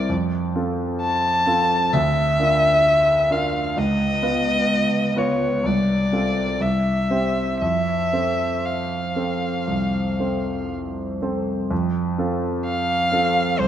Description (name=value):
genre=classical, romantic duo for violin and grand piano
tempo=57-66 BPM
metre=4/4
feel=rubato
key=F major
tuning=A4 = 440 Hz
part: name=warm violin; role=melody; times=0.0-13.7 s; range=C5 to A5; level=-21 LUFS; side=left 1 dB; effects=none
part: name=clear concert grand piano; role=accompaniment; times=0.0-13.7 s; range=C2 to C5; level=-22 LUFS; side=right 1 dB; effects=none
room=wet recital hall reverb, RT60 1.6 s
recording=dark, warm production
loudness=-19 LUFS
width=side -10 dB against mid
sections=0.0-11.7 A section; 11.7-13.7 A section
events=none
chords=0.1 F; 1.9 Bb/D; 3.8 Db7; 5.6 F/C; 6.6 C; 7.6 F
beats=| 0.10 1.01 1.93 2.85 | 3.76 4.69 5.64 6.60 | 7.61 8.64 9.69 10.71 | 11.71 12.65 13.58